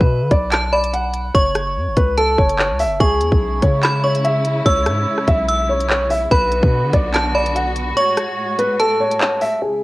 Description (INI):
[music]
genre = hip hop, drill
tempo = 145 BPM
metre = 4/4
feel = half-time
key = unclear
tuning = A4 = 439 Hz
[part]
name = dark grand piano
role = melody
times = 0.0-9.8 s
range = G#4 to F#5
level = -19 LUFS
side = left 1 dB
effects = low-pass filter, cassette tape, tape echo
[part]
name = metallic FM bell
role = second line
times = 0.0-9.6 s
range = A5 to E6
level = -22 LUFS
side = right 2 dB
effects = chorus, cassette tape, tape echo
[part]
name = long sustained 808-style bass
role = bass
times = 0.0-7.9 s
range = F#1 to D3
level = -21 LUFS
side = equal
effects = none
[part]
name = drill drum kit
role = drums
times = 0.0-9.5 s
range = handclaps, hi-hat, kick drum, rim click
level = -18 LUFS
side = equal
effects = cassette tape
[part]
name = warm symphonic string section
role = sustained chords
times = 3.0-9.8 s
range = A2 to F#4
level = -26 LUFS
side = left 1 dB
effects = low-pass filter, cassette tape
[sound]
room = light reverb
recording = home recording on cassette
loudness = -14 LUFS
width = side -18 dB against mid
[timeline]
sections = 0.0-9.6 A section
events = kick muted 8.0-9.6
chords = 0.0 Bm; 1.3 F#m; 3.0 C#m; 6.3 Bm; 8.0 F#madd9